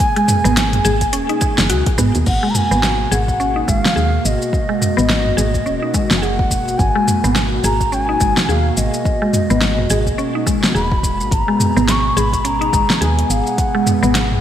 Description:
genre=organic downtempo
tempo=106 BPM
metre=4/4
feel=swing 59% on 16ths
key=G# minor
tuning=A4 = 439 Hz
part: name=bansuri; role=melody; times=0.0-14.4 s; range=D#5 to C#6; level=-21 LUFS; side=equal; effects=digital delay
part: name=airy breathy pad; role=sustained chords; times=0.0-14.4 s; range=B2 to G#4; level=-24 LUFS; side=right 1 dB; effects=chorus, sidechain pumping
part: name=deep house drum kit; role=drums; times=0.0-14.4 s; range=crash cymbal, hi-hat, shaker, snare drum, toms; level=-20 LUFS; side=equal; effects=gated reverb
part: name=electronic kick drum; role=drums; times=0.0-13.7 s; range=none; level=-20 LUFS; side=equal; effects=none
part: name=mallet-like synth pluck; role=arpeggios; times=0.2-14.1 s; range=G#3 to G#4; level=-21 LUFS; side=equal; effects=chorus, digital delay
part: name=woody FM bass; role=bass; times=0.4-14.4 s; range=D#1 to G#2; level=-19 LUFS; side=equal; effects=sidechain pumping
room=moderate lush hall reverb, RT60 2.4 s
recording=bright 1980s-style digital production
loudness=-14 LUFS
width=side -10 dB against mid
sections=0.0-2.3 A section; 2.3-14.4 B section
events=none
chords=0.0 G#m9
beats=| 0.00 0.56 1.13 1.70 | 2.26 2.83 3.40 3.96 | 4.53 5.09 5.66 6.22 | 6.79 7.36 7.92 8.49 | 9.05 9.62 10.19 10.75 | 11.32 11.88 12.45 13.02 | 13.58 14.15

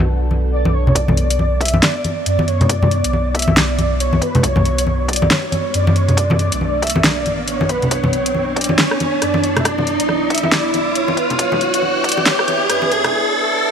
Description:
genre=deep dubstep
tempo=138 BPM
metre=4/4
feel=swing 60% on 16ths, half-time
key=B minor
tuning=A4 = 440 Hz
part: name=breathy flute-like synth lead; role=melody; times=0.0-13.1 s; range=F#4 to E5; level=-21 LUFS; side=equal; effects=ensemble chorus, dub echo
part: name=overtone-sweeping drone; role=sustained chords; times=0.0-13.7 s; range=B3 to A4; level=-24 LUFS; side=right 1 dB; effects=chorus, built-in reverb
part: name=soft dub sub bass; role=bass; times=0.0-13.1 s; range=A1 to F#2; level=-21 LUFS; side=equal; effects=none
part: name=congas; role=percussion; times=0.0-13.1 s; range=none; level=-19 LUFS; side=left 1 dB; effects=none
part: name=deep house drum kit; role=drums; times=1.0-13.1 s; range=hi-hat, rim click, snare drum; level=-19 LUFS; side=equal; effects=overdrive
part: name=electronic kick drum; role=drums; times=1.0-12.1 s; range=none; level=-26 LUFS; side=equal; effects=overdrive, high-pass filter on kick
part: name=riser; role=sound effects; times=3.3-13.7 s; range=none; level=-22 LUFS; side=equal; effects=none
room=light reverb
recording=high-pass filter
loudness=-14 LUFS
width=side -7 dB against mid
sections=1.0-13.7 A section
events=build-up 1.0-13.7; filter sweep 1.0-13.7; riser 3.3-13.7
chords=0.0 Bm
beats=0.09 0.52 | 0.96 1.39 1.83 2.26 | 2.70 3.13 3.57 4.00 | 4.43 4.87 5.30 5.74 | 6.17 6.61 7.04 7.48 | 7.91 8.35 8.78 9.22 | 9.65 10.09 10.52 10.96 | 11.39 11.83 12.26 12.70 | 13.13 13.57

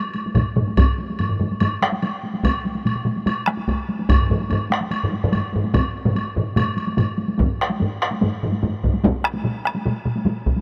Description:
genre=japanese traditional, taiko drum ensemble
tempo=145 BPM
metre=4/4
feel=straight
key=none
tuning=none
part: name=taiko ensemble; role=percussion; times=0.1-10.6 s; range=none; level=-27 LUFS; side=equal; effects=none
part: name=woodblock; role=percussion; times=0.1-7.1 s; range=none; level=-32 LUFS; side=equal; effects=none
part: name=taiko ensemble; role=percussion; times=0.3-8.9 s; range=none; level=-26 LUFS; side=equal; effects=none
part: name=taiko ensemble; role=percussion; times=0.4-10.6 s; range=none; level=-26 LUFS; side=equal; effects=none
part: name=taiko ensemble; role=percussion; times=0.4-10.6 s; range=none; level=-22 LUFS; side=equal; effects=none
room=light reverb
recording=none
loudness=-21 LUFS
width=mono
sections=0.0-7.4 A section; 7.4-10.6 B section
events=none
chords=none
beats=0.35 | 0.77 1.19 1.60 2.02 | 2.44 2.85 3.27 3.68 | 4.10 4.51 4.92 5.34 | 5.75 6.16 6.58 6.99 | 7.40 7.81 8.22 8.63 | 9.04 9.45 9.86 10.27

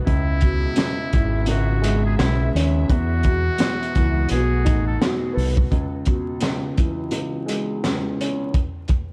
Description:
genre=hip hop, boom-bap hip-hop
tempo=85 BPM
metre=4/4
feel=swing 59% on 16ths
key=C# minor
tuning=A4 = 440 Hz
part: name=dark upright piano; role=accompaniment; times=0.0-8.6 s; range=C#2 to B4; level=-27 LUFS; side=equal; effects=cassette tape, high-pass filter, low-pass filter
part: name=clear studio string section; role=sustained chords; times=0.0-5.7 s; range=C#3 to E5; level=-36 LUFS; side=equal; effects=high-pass filter, low-pass filter
part: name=trumpet with metal mute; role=melody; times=0.1-5.0 s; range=E4 to A4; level=-31 LUFS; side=equal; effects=high-pass filter, low-pass filter, tape echo
part: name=deep dub fingered electric bass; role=bass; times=0.1-5.7 s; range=G#1 to E2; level=-23 LUFS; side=equal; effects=none
part: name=crunchy breakbeat drum kit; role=drums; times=0.1-9.1 s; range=hi-hat, kick drum, snare drum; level=-25 LUFS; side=equal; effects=none
room=small room ambience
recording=dark, warm production, vinyl crackle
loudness=-21 LUFS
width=mono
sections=0.0-5.7 A section; 5.7-9.1 B section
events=none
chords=0.1 C#m7; 2.9 E; 4.3 B7; 5.7 C#m7; 8.5 N.C.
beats=| 0.07 0.78 1.48 2.19 | 2.90 3.60 4.31 5.01 | 5.72 6.42 7.13 7.84 | 8.54

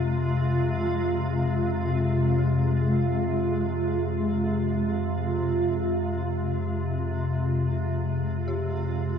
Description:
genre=dark ambient drone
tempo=free time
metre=none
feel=none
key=F minor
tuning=A4 = 442 Hz
part: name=granular cloud pad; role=sustained chords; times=0.0-9.2 s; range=C3 to F4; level=-27 LUFS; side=right 1 dB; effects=built-in reverb
part: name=dark detuned synth bell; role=arpeggios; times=0.0-9.2 s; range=C4 to Ab4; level=-42 LUFS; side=left 1 dB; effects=chorus, phaser, ping-pong delay
part: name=deep rumbling drone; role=drone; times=0.0-9.2 s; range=F2 to C3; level=-26 LUFS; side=left 2 dB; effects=built-in reverb
room=moderate huge ambient reverb, RT60 8.8 s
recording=none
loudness=-23 LUFS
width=side -7 dB against mid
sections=0.0-9.2 A section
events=fade-in on synth bell 0.0-9.2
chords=0.0 Fm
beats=free time

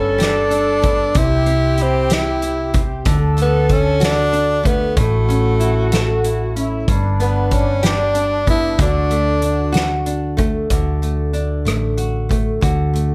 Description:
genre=six-eight pop ballad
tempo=63 BPM (dotted quarters)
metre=6/8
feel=straight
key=D major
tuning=A4 = 438 Hz
part: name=breathy tenor saxophone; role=melody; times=0.0-10.0 s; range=A3 to E4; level=-21 LUFS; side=equal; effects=none
part: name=warm French horn section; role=second line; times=0.0-10.3 s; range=D4 to A4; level=-26 LUFS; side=equal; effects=none
part: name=nylon-string guitar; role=accompaniment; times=0.0-13.1 s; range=G2 to A4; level=-25 LUFS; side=equal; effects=none
part: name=hollow-body short-scale fingered electric bass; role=bass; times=0.0-13.1 s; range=G1 to D2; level=-22 LUFS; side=equal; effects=none
part: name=soft-mallet drum kit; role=drums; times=0.2-13.1 s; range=hi-hat, kick drum, rim click, snare drum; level=-22 LUFS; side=equal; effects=none
room=small room reverb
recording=none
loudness=-17 LUFS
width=mono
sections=0.0-10.7 A section; 10.7-13.1 B section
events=none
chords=0.0 G; 1.2 C; 3.1 D; 5.0 A; 6.9 G; 8.8 D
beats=0.20 | 1.15 2.11 | 3.06 4.02 | 4.97 5.92 | 6.88 7.84 | 8.79 9.75 | 10.70 11.66 | 12.62

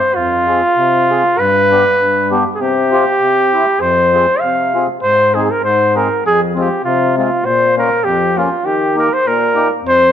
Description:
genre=alpine folk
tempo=99 BPM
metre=2/4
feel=swing 54% on 8ths, rubato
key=F minor, Ab major from 5.0 s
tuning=A4 = 441 Hz
part: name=clear flugelhorn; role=melody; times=0.0-10.1 s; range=F4 to F5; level=-12 LUFS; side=right 1 dB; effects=none
part: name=mellow accordion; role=accompaniment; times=0.1-10.1 s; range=F2 to Ab4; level=-17 LUFS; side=left 4 dB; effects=none
room=moderate recital hall reverb, RT60 1.4 s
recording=none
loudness=-11 LUFS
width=side -9 dB against mid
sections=0.0-5.0 A section; 5.0-10.1 B section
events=none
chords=0.2 Fm; 1.4 G; 2.6 Csus4; 3.2 C; 3.8 Fm; 5.0 Ab; 6.2 Fm; 7.4 Bbm; 8.6 Eb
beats=| 0.16 0.77 | 1.38 1.99 | 2.59 3.20 | 3.80 4.41 | 5.02 5.63 | 6.24 6.84 | 7.44 8.04 | 8.64 9.23 | 9.83

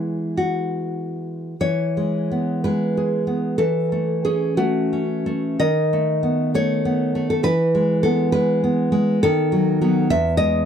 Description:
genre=romantic piece for solo classical guitar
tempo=46-69 BPM (dotted quarters)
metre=6/8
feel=rubato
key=E major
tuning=A4 = 441 Hz
part: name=nylon-string guitar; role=solo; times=0.0-10.7 s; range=E2 to E5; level=-18 LUFS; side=equal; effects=none
room=light reverb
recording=dry, close 1970s-style studio recording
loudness=-18 LUFS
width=side -8 dB against mid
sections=0.0-1.6 A section; 1.6-10.7 A section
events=none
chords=0.0 E; 3.6 F#m7/E; 5.6 B7/D#; 7.4 E; 9.2 B7/D#; 10.1 E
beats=0.38 | 1.60 2.62 | 3.59 4.57 | 5.60 6.53 | 7.44 8.32 | 9.22 10.10

